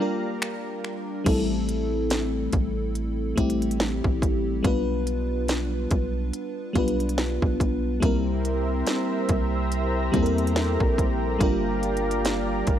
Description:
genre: contemporary R&B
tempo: 71 BPM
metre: 4/4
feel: swing 58% on 16ths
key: unclear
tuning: A4 = 438 Hz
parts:
  - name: FM electric piano with soft pad layer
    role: accompaniment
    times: 0.0-12.8 s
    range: G3 to B4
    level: -26 LUFS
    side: left 1 dB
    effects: chorus
  - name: lush unison pad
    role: sustained chords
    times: 0.0-1.2, 8.0-12.8 s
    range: G4 to Bb5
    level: -31 LUFS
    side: equal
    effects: chorus
  - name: trap drum kit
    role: drums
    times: 0.4-12.8 s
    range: crash cymbal, finger snaps, hi-hat, kick drum, snare drum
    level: -26 LUFS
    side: equal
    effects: none
  - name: long sustained 808-style bass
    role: bass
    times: 1.3-12.8 s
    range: G1 to E2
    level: -28 LUFS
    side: equal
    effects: none
room: digital ambience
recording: dry, gritty hardware recording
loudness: -22 LUFS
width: side -10 dB against mid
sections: 0.0-1.3 A section; 1.3-12.8 B section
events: break 0.0-1.3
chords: 0.0 Bb6; 1.3 Am7; 4.6 G7/B; 8.0 C7; 11.4 Gm7

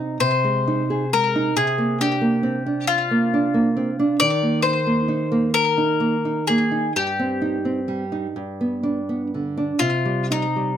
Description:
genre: romantic duo for mandolin and classical guitar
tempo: 39-46 BPM (dotted quarters)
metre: 6/8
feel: rubato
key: C minor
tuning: A4 = 437 Hz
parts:
  - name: bowl-back mandolin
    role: melody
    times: 0.0-10.8 s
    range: Eb4 to D5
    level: -22 LUFS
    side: left 4 dB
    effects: slapback echo
  - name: nylon-string guitar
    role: accompaniment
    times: 0.0-10.8 s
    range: G2 to Ab4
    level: -21 LUFS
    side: right 2 dB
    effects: none
room: little or no reverb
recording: close, detailed microphones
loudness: -19 LUFS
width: side -9 dB against mid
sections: 0.0-10.8 A section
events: none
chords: 0.2 Ab/C; 1.6 Bb/C; 4.2 Eb5; 7.0 Cm/G; 8.4 G; 9.8 Cm

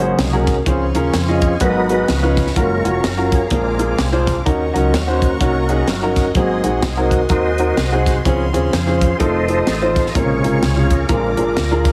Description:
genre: uptempo gospel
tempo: 127 BPM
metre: 4/4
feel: swing 60% on 8ths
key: Db major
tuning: A4 = 436 Hz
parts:
  - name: warm grand piano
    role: accompaniment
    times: 0.0-11.9 s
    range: Ab2 to Eb5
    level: -21 LUFS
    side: equal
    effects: none
  - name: tonewheel organ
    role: sustained chords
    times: 0.0-11.9 s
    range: C3 to Eb5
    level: -24 LUFS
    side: equal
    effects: fast rotary speaker, chorus vibrato
  - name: deep dub fingered electric bass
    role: bass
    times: 0.0-11.9 s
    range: F1 to F2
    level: -23 LUFS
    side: equal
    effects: none
  - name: tight funk drum kit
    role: drums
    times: 0.2-11.9 s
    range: hi-hat, kick drum, snare drum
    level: -22 LUFS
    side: equal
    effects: none
  - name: clear studio string section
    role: sustained chords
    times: 0.7-11.9 s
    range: C5 to Eb6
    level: -34 LUFS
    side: equal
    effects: none
room: light reverb, studio reverb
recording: heavily compressed radio sound, multiband compression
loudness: -17 LUFS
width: mono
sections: 0.0-11.9 A section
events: tonewheel organ solo 0.0-11.9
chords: 0.0 Ab9sus4; 0.7 Dbmaj7; 1.6 Abm7; 2.1 Db9; 2.6 Gbmaj7; 3.5 Bb7; 4.5 Ebm7; 6.4 Ab7; 8.2 Dbmaj7; 9.2 F7; 10.1 Bbm7; 11.1 Bb7

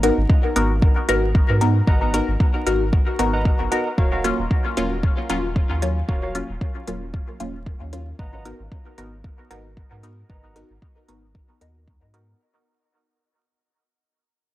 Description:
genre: dub techno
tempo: 114 BPM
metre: 4/4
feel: swing 54% on 16ths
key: unclear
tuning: A4 = 439 Hz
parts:
  - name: filtered dub chord stab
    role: stabs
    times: 0.0-12.4 s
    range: Gb3 to Bb4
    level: -23 LUFS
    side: left 1 dB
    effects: chorus, phaser, sidechain pumping, dub echo
  - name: soft dub sub bass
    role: bass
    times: 0.0-12.3 s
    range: Eb1 to Ab2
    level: -24 LUFS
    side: equal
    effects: tube saturation, sidechain pumping
  - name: electronic hi-hat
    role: drums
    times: 0.0-12.3 s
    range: none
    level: -31 LUFS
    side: equal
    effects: none
  - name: electronic kick drum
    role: drums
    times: 0.3-12.0 s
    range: none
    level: -19 LUFS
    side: equal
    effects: none
  - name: warbly lo-fi synth keys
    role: riff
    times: 1.9-10.6 s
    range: Gb4 to Bb5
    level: -32 LUFS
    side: right 2 dB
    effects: chorus, sidechain pumping, low-pass filter, dub echo
room: little or no reverb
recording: dry, gritty hardware recording, vinyl crackle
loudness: -18 LUFS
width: side -15 dB against mid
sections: 0.0-12.4 A section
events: fade-out 0.0-12.4; filter sweep on synth keys 0.0-12.4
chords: 0.0 Abm9; 4.0 Ebm9; 8.2 Abm9

